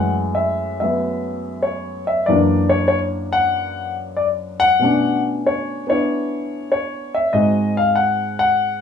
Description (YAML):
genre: solo jazz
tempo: 95 BPM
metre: 4/4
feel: swing 69% on 8ths, rubato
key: unclear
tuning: A4 = 440 Hz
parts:
  - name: warm concert grand piano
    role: solo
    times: 0.0-8.8 s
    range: F#2 to F#5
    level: -17 LUFS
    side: left 2 dB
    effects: none
room: moderate studio ambience, RT60 0.5 s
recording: studio reverb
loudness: -17 LUFS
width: side -7 dB against mid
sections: 0.0-8.8 A section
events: none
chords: 0.0 F#m9; 2.3 F#7b13; 4.8 Bm9; 7.3 G#7